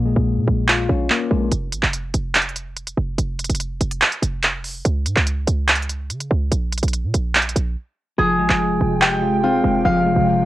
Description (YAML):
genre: hip hop, trap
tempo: 144 BPM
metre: 4/4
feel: half-time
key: F minor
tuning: A4 = 444 Hz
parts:
  - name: mellow electric guitar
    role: accompaniment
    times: 0.0-1.5, 8.2-10.5 s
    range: Bb2 to G4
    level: -20 LUFS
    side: left 4 dB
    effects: low-pass filter, cassette tape
  - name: short 808-style bass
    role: bass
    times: 0.0-10.5 s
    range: F1 to Db3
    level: -22 LUFS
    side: right 1 dB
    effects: none
  - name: trap drum kit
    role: drums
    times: 0.7-9.1 s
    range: handclaps, hi-hat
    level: -18 LUFS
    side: right 1 dB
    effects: cassette tape
  - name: hollow soft pad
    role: sustained chords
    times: 8.4-10.5 s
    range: C3 to G5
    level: -24 LUFS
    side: right 1 dB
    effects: ensemble chorus, cassette tape, plate reverb
  - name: concert harp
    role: arpeggios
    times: 8.2-10.5 s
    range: F4 to G5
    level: -19 LUFS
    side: right 1 dB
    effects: low-pass filter, cassette tape, analog delay, plate reverb
room: light reverb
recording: home recording on cassette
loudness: -17 LUFS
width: side -15 dB against mid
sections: 0.0-10.5 A section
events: break 0.0-1.5, 1.5-8.2; hi-hats muted 8.2-10.5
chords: 0.0 Bbm7; 1.5 N.C.; 4.8 Db5; 6.5 N.C.; 8.2 Fmadd9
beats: 0.27 0.68 1.10 | 1.52 1.93 2.35 2.77 | 3.18 3.60 4.02 4.43 | 4.85 5.27 5.68 6.10 | 6.52 6.93 7.35 7.77 | 8.18 8.60 9.02 9.43 | 9.85 10.27